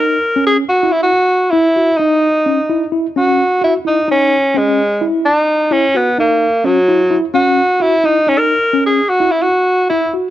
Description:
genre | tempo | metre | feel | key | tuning
progressive instrumental, progressive | 258 BPM (eighths) | 9/8 | straight | F# mixolydian | A4 = 437 Hz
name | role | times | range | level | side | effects
clear tenor saxophone | melody | 0.0-10.1 s | F#3 to A#4 | -12 LUFS | equal | none
tine electric piano | arpeggios | 0.0-10.3 s | C#4 to F#4 | -17 LUFS | left 1 dB | medium stereo tremolo
room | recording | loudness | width
small room ambience | dry, close 1970s-style studio recording | -11 LUFS | side -13 dB against mid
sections
0.0-10.3 A section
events
none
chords
0.0 F#5

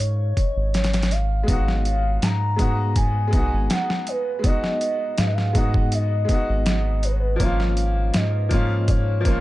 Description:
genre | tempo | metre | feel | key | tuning
trip hop | 81 BPM | 4/4 | straight | G# dorian | A4 = 440 Hz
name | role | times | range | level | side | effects
pure breathy sine lead | melody | 0.0-9.4 s | A#4 to A#5 | -27 LUFS | equal | lush chorus, tape echo
round analog bass | bass | 0.0-9.4 s | G#1 to G#2 | -22 LUFS | equal | none
boom bap sampler-style drum kit | drums | 0.0-9.4 s | hi-hat, kick drum, snare drum | -22 LUFS | equal | overdrive, small room ambience
bright upright piano | accompaniment | 1.4-9.4 s | E#3 to F#4 | -27 LUFS | left 1 dB | harmonic tremolo, tape echo
room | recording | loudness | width
digital ambience | dark, warm production, nothing above 10.6 kHz | -19 LUFS | side -17 dB against mid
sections
0.0-9.4 A section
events
none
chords
0.0 A#m/G# (rootless); 1.5 G#m7; 7.4 A#m/G#

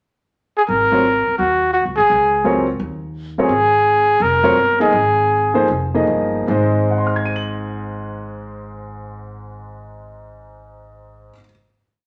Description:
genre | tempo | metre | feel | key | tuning
modal jazz | 144-172 BPM | 4/4 | swing 66% on 8ths | Ab mixolydian | A4 = 441 Hz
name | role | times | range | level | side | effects
breathy trumpet | melody | 0.6-5.9 s | Gb4 to Bb4 | -17 LUFS | equal | none
upright bass | bass | 0.7-11.3 s | F1 to Eb2 | -28 LUFS | equal | none
warm concert grand piano | accompaniment | 0.9-11.5 s | Ab2 to Gb7 | -22 LUFS | equal | none
room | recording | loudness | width
wet studio reverb, RT60 0.9 s | none | -17 LUFS | mono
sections
0.0-0.7 pickup bar; 0.7-6.5 A section; 6.5-9.8 final chord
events
slowing down 3.5-6.5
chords
0.0 N.C.; 0.7 Ab9sus4; 3.5 Db (rootless); 6.5 Ab

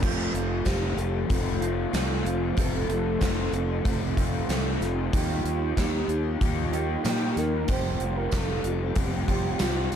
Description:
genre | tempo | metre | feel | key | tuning
rock, shoegaze and dream pop | 94 BPM | 4/4 | straight | F mixolydian | A4 = 441 Hz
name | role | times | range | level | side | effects
warm velvety synth lead | melody | 0.0-10.0 s | F4 to C5 | -33 LUFS | right 2 dB | chorus, analog delay
picked twelve-string acoustic guitar | arpeggios | 0.0-10.0 s | F3 to A4 | -38 LUFS | left 15 dB | wide subtle chorus, analog delay
electric guitar through a small old amp | riff | 0.0-10.0 s | F2 to G4 | -33 LUFS | right 15 dB | reverse reverb
raw garage guitar | riff | 0.0-10.0 s | Eb3 to G4 | -32 LUFS | left 12 dB | overdrive, lush chorus
fuzz fingered electric bass | bass | 0.0-10.0 s | F1 to Bb2 | -29 LUFS | equal | overdrive
gated 80s drum kit | drums | 0.0-10.0 s | crash cymbal, hi-hat, kick drum, snare drum | -28 LUFS | equal | none
tambourine | percussion | 0.7-9.7 s | none | -44 LUFS | right 19 dB | none
room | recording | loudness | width
small room reverb | dark, warm production | -24 LUFS | side -8 dB against mid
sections
0.0-10.0 A section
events
none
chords
0.0 F; 5.1 Ebadd9; 7.7 Fsus2

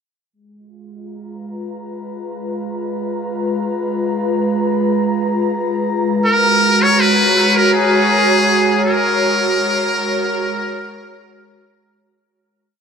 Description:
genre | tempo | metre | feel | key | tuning
ambient | free time | none | none | G# dorian | A4 = 440 Hz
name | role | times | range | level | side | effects
airy breathy pad | sustained chords | 0.3-12.2 s | G#3 to A#5 | -17 LUFS | right 1 dB | chorus
trumpet with metal mute | melody | 6.3-11.4 s | G#4 to C#5 | -14 LUFS | left 1 dB | dub echo
room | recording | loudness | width
wet huge ambient reverb, RT60 6.8 s | none | -14 LUFS | side -6 dB against mid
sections
0.3-12.2 groove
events
fade-in on analog synth pad 0.3-12.2; fade-out 8.2-12.2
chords
0.3 G#m69; 6.3 F#/G#

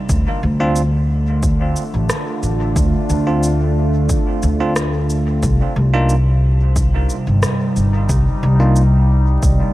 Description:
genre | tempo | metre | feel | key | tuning
ambient dub | 90 BPM | 4/4 | straight | unclear | A4 = 440 Hz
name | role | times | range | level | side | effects
warbly tape-like pad | sustained chords | 0.0-9.7 s | C3 to F4 | -22 LUFS | equal | chorus, built-in reverb, phaser
upright bass | bass | 0.1-9.6 s | G1 to D2 | -15 LUFS | equal | none
electronic cabasa and rim click | drums | 0.1-9.6 s | none | -25 LUFS | equal | dub echo
electronic kick drum | drums | 0.1-9.6 s | none | -19 LUFS | equal | overdrive
bell-like tine electric piano | stabs | 0.6-8.8 s | Bb3 to F4 | -25 LUFS | right 2 dB | medium stereo tremolo, dub echo
room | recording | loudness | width
little or no reverb | vinyl crackle | -14 LUFS | side -16 dB against mid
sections
0.0-9.7 A section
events
none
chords
0.1 Dm; 5.4 Cmadd11

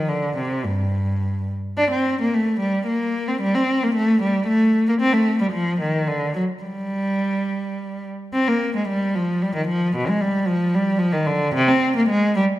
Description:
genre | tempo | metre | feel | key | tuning
classical, baroque-style suite movement for unaccompanied cello | 103-116 BPM | 3/4 | rubato | G minor | A4 = 440 Hz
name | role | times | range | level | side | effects
rich cello | solo | 0.0-12.4 s | G2 to D4 | -19 LUFS | equal | none
room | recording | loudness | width
wet recital hall reverb, RT60 1.6 s | none | -18 LUFS | side -15 dB against mid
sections
0.0-8.3 A section; 8.3-12.6 A section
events
none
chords
none

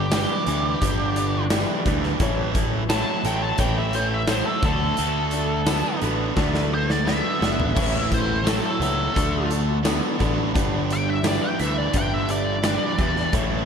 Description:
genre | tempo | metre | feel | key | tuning
classic rock | 86 BPM | 4/4 | straight | unclear | A4 = 440 Hz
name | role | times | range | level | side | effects
bluesy overdriven lead guitar | melody | 0.0-13.3 s | G4 to A5 | -27 LUFS | equal | wah, distortion, slapback echo
bright upright piano | accompaniment | 0.0-13.6 s | C#4 to E5 | -32 LUFS | left 5 dB | slapback echo
overdriven tonewheel organ | sustained chords | 0.0-13.7 s | C#4 to C#5 | -38 LUFS | equal | none
cranked stack guitar | riff | 0.0-13.7 s | G2 to B3 | -30 LUFS | left 11 dB | overdrive, phaser, slapback echo
distorted electric guitar | riff | 0.0-13.7 s | G2 to B3 | -28 LUFS | right 11 dB | overdrive, slapback echo
growling picked electric bass | bass | 0.0-13.7 s | F#1 to E2 | -26 LUFS | equal | overdrive
big rock drum kit | drums | 0.1-13.5 s | crash cymbal, hi-hat, kick drum, snare drum, tambourine, toms | -25 LUFS | equal | none
room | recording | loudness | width
moderate lush hall reverb, RT60 2.9 s | big arena sound, lossy compression artefacts | -20 LUFS | side -7 dB against mid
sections
0.0-13.7 A section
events
lead electric guitar solo 0.0-13.7; drum fill 6.4-7.8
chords
0.0 G; 2.2 A; 4.6 D; 7.8 A; 9.2 D; 10.5 G

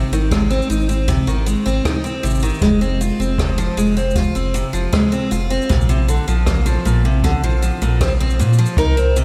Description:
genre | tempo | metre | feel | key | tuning
folktronica | 78 BPM | 4/4 | straight | unclear | A4 = 443 Hz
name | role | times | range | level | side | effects
picked steel-string acoustic guitar | arpeggios | 0.0-9.2 s | Bb2 to F4 | -21 LUFS | equal | subtle chorus, tape echo
warm sub bass | bass | 0.0-9.2 s | F1 to Bb2 | -21 LUFS | equal | none
cabasa and rim click | drums | 0.1-9.2 s | none | -33 LUFS | equal | none
kick drum | drums | 0.3-8.9 s | none | -23 LUFS | equal | none
mandolin | melody | 8.8-9.2 s | Bb4 | -22 LUFS | equal | none
room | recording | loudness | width
moderate lush hall reverb, RT60 2.8 s | dreamy mix soaked in reverb, vinyl crackle | -17 LUFS | mono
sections
0.0-9.2 A section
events
none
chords
0.0 Ab; 2.6 Fm; 5.7 Bbsus2

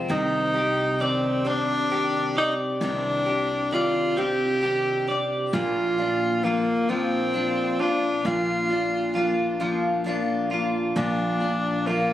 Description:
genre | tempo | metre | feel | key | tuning
six-eight pop ballad | 44 BPM (dotted quarters) | 6/8 | straight | unclear | A4 = 438 Hz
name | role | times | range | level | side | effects
direct-recorded clean electric guitar | accompaniment | 0.0-12.1 s | Bb2 to D5 | -27 LUFS | left 1 dB | double-tracked left and right
picked steel-string acoustic guitar | arpeggios | 0.0-12.1 s | Bb2 to G4 | -31 LUFS | equal | none
upright bass | bass | 0.0-12.1 s | Bb1 to C2 | -34 LUFS | equal | none
breathy tenor saxophone | melody | 0.1-12.1 s | Bb3 to G4 | -24 LUFS | equal | tape echo
room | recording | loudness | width
light reverb, small room ambience | recorded on a phone in the room, studio reverb | -22 LUFS | side -12 dB against mid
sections
0.0-12.1 A section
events
none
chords
0.1 Cmadd9; 5.5 Bb

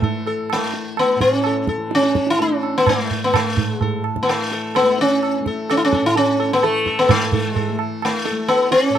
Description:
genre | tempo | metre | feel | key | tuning
indian classical, Hindustani | 128 BPM | 4/4 | straight | A raga hamsadhwani | A4 = 440 Hz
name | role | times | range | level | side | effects
sitar | melody | 0.0-9.0 s | A3 to A4 | -17 LUFS | left 1 dB | plate reverb
tanpura | drone | 0.0-9.0 s | A2 to A3 | -28 LUFS | left 3 dB | none
tabla | percussion | 0.0-9.0 s | none | -22 LUFS | right 6 dB | none
room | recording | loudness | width
moderate studio reverb, RT60 0.5 s | dark, warm production | -16 LUFS | side -10 dB against mid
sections
0.0-7.1 A section; 7.1-9.0 B section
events
none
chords
none

